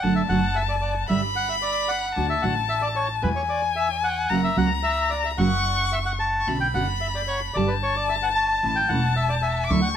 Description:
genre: tango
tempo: 112 BPM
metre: 4/4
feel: rubato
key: unclear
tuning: A4 = 440 Hz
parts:
  - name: bandoneon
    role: melody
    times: 0.0-9.9 s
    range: B4 to A5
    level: -26 LUFS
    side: equal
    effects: tape echo
  - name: warm violin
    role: second line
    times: 0.0-10.0 s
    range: G#5 to D6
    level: -26 LUFS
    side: left 5 dB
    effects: none
  - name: nylon-string guitar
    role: accompaniment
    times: 0.0-9.8 s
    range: B2 to G4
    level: -24 LUFS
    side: right 2 dB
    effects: none
  - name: upright bass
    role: bass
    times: 0.0-10.0 s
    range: E1 to E2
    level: -28 LUFS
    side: right 1 dB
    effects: none
room: light reverb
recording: none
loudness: -21 LUFS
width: side -9 dB against mid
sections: 0.0-10.0 A section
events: none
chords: 0.0 D/F#; 1.1 G5; 2.2 D; 3.2 E; 4.3 F#; 6.5 Bmadd9; 7.6 Gsus2; 8.6 A

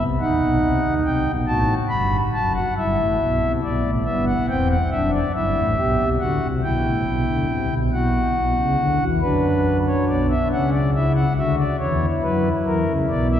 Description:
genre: classical, baroque-style 3-part fugue for pipe organ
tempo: 46 BPM (dotted quarters)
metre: 12/8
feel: straight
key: E minor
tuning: A4 = 438 Hz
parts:
  - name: pipe organ, principal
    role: solo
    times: 0.0-13.4 s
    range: E1 to B5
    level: -18 LUFS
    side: equal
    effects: none
room: wet cathedral reverb, RT60 4.2 s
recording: heard from further back in the room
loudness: -18 LUFS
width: side -10 dB against mid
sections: 0.0-13.4 A section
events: none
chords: 0.2 B7; 2.8 Em/G; 7.9 Bm; 10.5 F#7(no3)/C#

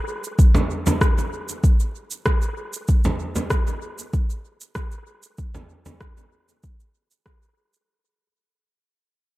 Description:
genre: downtempo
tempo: 96 BPM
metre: 4/4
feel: straight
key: none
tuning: none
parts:
  - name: electronic shaker and rim click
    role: drums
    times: 0.2-7.9 s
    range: none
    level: -29 LUFS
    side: equal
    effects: tape echo
  - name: electronic kick drum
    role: drums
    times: 0.4-7.4 s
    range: none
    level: -18 LUFS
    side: equal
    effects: overdrive
  - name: frame drum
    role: percussion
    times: 0.5-6.0 s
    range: none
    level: -24 LUFS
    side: right 1 dB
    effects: tape echo
room: light reverb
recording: echo-heavy mix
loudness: -19 LUFS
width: side -18 dB against mid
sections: 0.0-7.9 A section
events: fade-out 0.0-7.9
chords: none

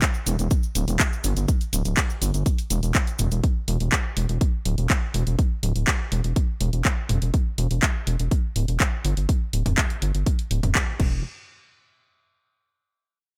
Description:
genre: melodic techno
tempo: 123 BPM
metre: 4/4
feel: straight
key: unclear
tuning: A4 = 440 Hz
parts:
  - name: electronic kick drum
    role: drums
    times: 0.0-11.1 s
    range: none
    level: -25 LUFS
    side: equal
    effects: none
  - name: house drum kit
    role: drums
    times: 0.0-11.1 s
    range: crash cymbal, handclaps, hi-hat, toms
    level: -29 LUFS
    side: equal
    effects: none
  - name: cabasa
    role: percussion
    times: 0.0-3.4 s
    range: none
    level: -35 LUFS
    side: equal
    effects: none
  - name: gritty driven synth bass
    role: bass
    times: 0.3-11.2 s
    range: D1 to G1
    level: -25 LUFS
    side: equal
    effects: sidechain pumping
room: little or no reverb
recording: bright 1980s-style digital production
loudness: -24 LUFS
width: mono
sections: 0.0-11.2 A section; 11.2-13.2 B section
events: filter sweep on analog synth bass 0.0-11.2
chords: none

